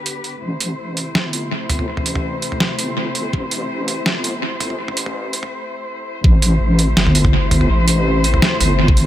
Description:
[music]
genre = half-time drum and bass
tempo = 165 BPM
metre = 4/4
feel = half-time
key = A minor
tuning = A4 = 440 Hz
[part]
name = dark symphonic cello section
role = sustained chords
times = 0.0-9.1 s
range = C3 to C5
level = -23 LUFS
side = left 2 dB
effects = sidechain pumping
[part]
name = boom bap sampler-style drum kit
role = drums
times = 0.1-9.0 s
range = hi-hat, snare drum, toms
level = -19 LUFS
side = right 1 dB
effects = overdrive, analog delay
[part]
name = deep soft wobble bass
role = bass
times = 0.4-9.1 s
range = G1 to A1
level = -18 LUFS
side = equal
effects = chorus, high-pass filter
[part]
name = electronic kick drum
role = drums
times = 3.3-3.4, 6.2-9.0 s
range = none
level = -13 LUFS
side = equal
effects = none
[sound]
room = digital ambience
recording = echo-heavy mix, high-pass filter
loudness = -15 LUFS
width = side -12 dB against mid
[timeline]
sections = 0.4-6.2 A section; 6.2-9.1 B section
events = build-up 0.4-6.2; break 5.5-6.2; drop 6.2-9.1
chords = 0.4 Am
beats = 0.06 | 0.42 0.79 1.15 1.51 | 1.88 2.24 2.60 2.97 | 3.33 3.70 4.06 4.42 | 4.79 5.15 5.51 5.88 | 6.24 6.61 6.97 7.33 | 7.70 8.06 8.42 8.79

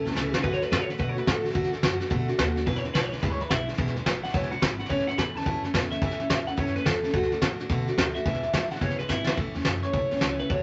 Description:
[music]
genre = rockabilly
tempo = 215 BPM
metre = 4/4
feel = swing 64% on 8ths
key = A major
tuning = A4 = 440 Hz
[part]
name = electric guitar through a small old amp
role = melody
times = 0.0-10.6 s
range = E4 to B5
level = -33 LUFS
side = equal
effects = phaser
[part]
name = picked steel-string acoustic guitar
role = accompaniment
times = 0.0-10.6 s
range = E2 to F#4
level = -33 LUFS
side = equal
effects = none
[part]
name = upright bass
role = bass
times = 0.1-10.6 s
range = E1 to B2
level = -36 LUFS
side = equal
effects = none
[part]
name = soft brush drum kit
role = drums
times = 0.1-10.6 s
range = hi-hat, kick drum, snare drum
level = -29 LUFS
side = equal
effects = none
[sound]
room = wet club ambience, RT60 0.5 s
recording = tape saturation, nothing above 7.9 kHz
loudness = -27 LUFS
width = mono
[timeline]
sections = 0.4-9.4 A section; 9.4-10.6 B section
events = drum fill 0.2, 9.1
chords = 0.4 D; 2.7 E7; 4.9 A; 7.1 D; 8.3 E7; 9.4 A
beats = 0.16 | 0.43 0.71 0.99 1.27 | 1.55 1.83 2.11 2.39 | 2.67 2.95 3.23 3.50 | 3.78 4.06 4.34 4.62 | 4.90 5.18 5.46 5.74 | 6.02 6.30 6.58 6.86 | 7.13 7.41 7.69 7.97 | 8.25 8.53 8.81 9.09 | 9.37 9.65 9.93 10.21 | 10.50

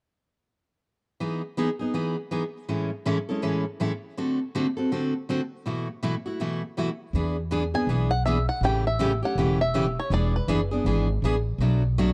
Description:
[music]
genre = acoustic string swing (jazz manouche)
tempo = 161 BPM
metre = 4/4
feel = swing 62% on 8ths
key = E major, E mixolydian from 7.1 s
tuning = A4 = 440 Hz
[part]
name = picked steel-string acoustic guitar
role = accompaniment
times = 1.2-12.1 s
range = A2 to A4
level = -28 LUFS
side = equal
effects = none
[part]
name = upright bass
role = bass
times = 7.1-12.1 s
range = E1 to E2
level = -27 LUFS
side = equal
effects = none
[part]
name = bluegrass banjo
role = melody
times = 7.7-10.7 s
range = B4 to G#5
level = -30 LUFS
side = equal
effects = none
[sound]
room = small room ambience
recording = dry, close 1970s-style studio recording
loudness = -26 LUFS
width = mono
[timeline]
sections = 1.2-7.1 A section; 7.1-12.1 B section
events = none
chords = 1.2 Emaj7; 2.7 Amaj7; 4.2 D7; 5.7 B7sus4; 7.1 E7; 8.6 A7; 10.1 E7; 11.6 Bm7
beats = | 1.19 1.56 1.94 2.31 | 2.68 3.05 3.42 3.80 | 4.17 4.54 4.91 5.28 | 5.65 6.03 6.40 6.77 | 7.14 7.51 7.88 8.25 | 8.62 8.99 9.37 9.74 | 10.11 10.48 10.86 11.23 | 11.60 11.97

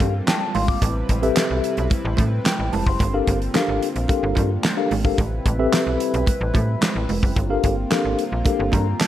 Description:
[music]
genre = early-eighties boogie funk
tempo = 110 BPM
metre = 4/4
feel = straight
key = unclear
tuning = A4 = 440 Hz
[part]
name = mellow tine electric piano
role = accompaniment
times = 0.0-9.1 s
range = C4 to D6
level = -23 LUFS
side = left 3 dB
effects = medium stereo tremolo
[part]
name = chorused pulse-width pad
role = sustained chords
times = 0.0-9.1 s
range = C3 to B4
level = -29 LUFS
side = equal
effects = none
[part]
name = slap-like FM bass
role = bass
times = 0.0-8.9 s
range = E#1 to A2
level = -23 LUFS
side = equal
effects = none
[part]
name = damped 70s drum kit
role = drums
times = 0.0-9.1 s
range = handclaps, hi-hat, kick drum, snare drum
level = -22 LUFS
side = equal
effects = gated reverb
[part]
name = congas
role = percussion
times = 0.3-9.1 s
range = none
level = -29 LUFS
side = right 6 dB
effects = none
[sound]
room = small room ambience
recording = none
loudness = -18 LUFS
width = side -12 dB against mid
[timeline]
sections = 0.0-9.1 A section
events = tine electric piano fill 0.0-0.8, 8.5-9.1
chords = 0.0 Gm9; 0.8 Am9; 3.0 Gm9; 5.2 Am9; 7.4 Gm9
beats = 0.27 | 0.82 1.36 1.91 2.46 | 3.00 3.55 4.09 4.64 | 5.18 5.73 6.27 6.82 | 7.37 7.91 8.46 9.00

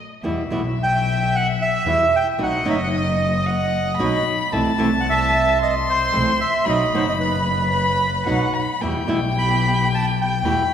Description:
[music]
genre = tango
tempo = 112 BPM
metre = 4/4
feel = rubato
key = E harmonic minor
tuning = A4 = 439 Hz
[part]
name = warm violin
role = second line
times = 0.2-10.7 s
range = D#5 to C6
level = -24 LUFS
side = left 3 dB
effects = none
[part]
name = flamenco guitar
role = accompaniment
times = 0.2-10.6 s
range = B2 to F#4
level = -24 LUFS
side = right 1 dB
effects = none
[part]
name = warm double bass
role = bass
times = 0.2-10.7 s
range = F#1 to E2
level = -24 LUFS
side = left 1 dB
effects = none
[part]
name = bandoneon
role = melody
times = 0.8-10.7 s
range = B4 to B5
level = -21 LUFS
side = right 2 dB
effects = none
[part]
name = warm studio string section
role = stabs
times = 8.8-10.7 s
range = B3 to G4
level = -31 LUFS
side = right 4 dB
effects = none
[sound]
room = wet scoring stage reverb, RT60 1.9 s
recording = recorded in a church or concert hall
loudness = -17 LUFS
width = side -8 dB against mid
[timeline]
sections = 0.2-10.7 A section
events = break 0.0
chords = 0.2 Em; 2.4 B; 4.5 Am/C; 6.7 B; 8.8 Em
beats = | 0.24 0.78 1.32 1.86 | 2.40 2.94 3.47 4.00 | 4.54 5.07 5.60 6.14 | 6.67 7.20 7.74 8.28 | 8.83 9.37 9.91 10.45

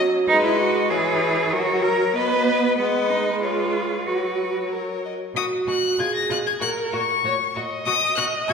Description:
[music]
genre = quick classical-period movement for string quartet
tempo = 96 BPM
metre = 2/4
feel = straight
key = B major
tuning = A4 = 440 Hz
[part]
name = rich violin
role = melody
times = 0.0-8.5 s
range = C#5 to A#6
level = -25 LUFS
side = left 7 dB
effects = none
[part]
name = rich violin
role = second line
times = 0.0-8.5 s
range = E#4 to D#5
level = -28 LUFS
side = left 2 dB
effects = none
[part]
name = warm viola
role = accompaniment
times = 0.0-8.5 s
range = E3 to E5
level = -24 LUFS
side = right 2 dB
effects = none
[part]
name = rich cello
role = bass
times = 0.3-8.5 s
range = A#2 to B4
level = -24 LUFS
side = right 3 dB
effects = none
[sound]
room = wet scoring stage reverb, RT60 2.0 s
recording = recorded in a church or concert hall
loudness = -19 LUFS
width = side -6 dB against mid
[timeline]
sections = 0.0-5.4 A section; 5.4-8.5 B section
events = none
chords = 0.3 G#m; 0.9 C#m7/E; 1.5 F#; 2.2 B; 2.8 G#m; 3.4 C#7/G#; 4.1 F#sus4; 5.4 B5; 6.0 G#madd9; 6.6 F#/A# (rootless); 7.9 B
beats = | 0.29 0.91 | 1.53 2.15 | 2.78 3.43 | 4.08 4.72 | 5.36 5.99 | 6.62 7.25 | 7.88 8.50

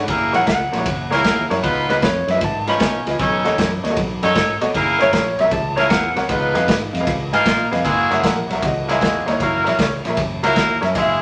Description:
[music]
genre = electric blues shuffle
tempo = 154 BPM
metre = 4/4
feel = swing 67% on 8ths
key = F# mixolydian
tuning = A4 = 439 Hz
[part]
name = clean lap steel guitar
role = second line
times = 0.0-6.3 s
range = B4 to B5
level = -23 LUFS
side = equal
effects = none
[part]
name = fingered electric bass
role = bass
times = 0.0-11.2 s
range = F#1 to B2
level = -28 LUFS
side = equal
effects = none
[part]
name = bright horn section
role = stabs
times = 0.1-11.2 s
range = G#3 to C#5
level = -22 LUFS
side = equal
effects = none
[part]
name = raw garage drum kit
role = drums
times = 0.1-11.1 s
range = kick drum, ride cymbal, snare drum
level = -24 LUFS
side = equal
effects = none
[part]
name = warm upright piano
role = accompaniment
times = 0.3-11.2 s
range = E4 to G#5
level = -25 LUFS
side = equal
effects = none
[sound]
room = wet studio reverb, RT60 0.7 s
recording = none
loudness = -18 LUFS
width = mono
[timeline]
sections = 0.0-7.8 A section; 7.8-11.2 A section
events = electric slide guitar solo 0.0-7.8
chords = 0.1 F#9; 1.6 C#9; 3.2 B9; 4.7 F#9; 6.3 C#9; 7.8 F#9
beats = | 0.08 0.47 0.86 1.25 | 1.64 2.03 2.42 2.80 | 3.19 3.58 3.97 4.36 | 4.74 5.13 5.52 5.91 | 6.30 6.68 7.07 7.46 | 7.85 8.24 8.63 9.02 | 9.40 9.79 10.18 10.57 | 10.96

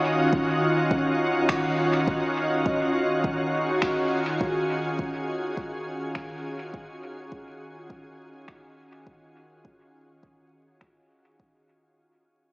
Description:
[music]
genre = ambient dub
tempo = 103 BPM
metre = 4/4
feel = straight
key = Eb minor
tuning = A4 = 440 Hz
[part]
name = soft additive organ-like pad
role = sustained chords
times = 0.0-12.0 s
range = Eb3 to Eb5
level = -24 LUFS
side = equal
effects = ensemble chorus, built-in reverb
[part]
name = electronic kick drum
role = drums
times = 0.3-11.5 s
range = none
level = -31 LUFS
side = equal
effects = none
[part]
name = electronic finger snaps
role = drums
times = 1.5-10.9 s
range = none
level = -34 LUFS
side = equal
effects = low-pass filter on snare, dub echo
[sound]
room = wet huge ambient reverb, RT60 4.4 s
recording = dreamy mix soaked in reverb, vinyl crackle, small speaker sound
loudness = -23 LUFS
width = side -27 dB against mid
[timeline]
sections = 0.0-12.0 A section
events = fade-out 0.0-12.0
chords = 0.0 Ebm9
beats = | 0.33 0.91 1.49 2.07 | 2.66 3.24 3.82 4.40 | 4.99 5.57 6.15 6.73 | 7.32 7.90 8.48 9.06 | 9.65 10.23 10.81 11.39

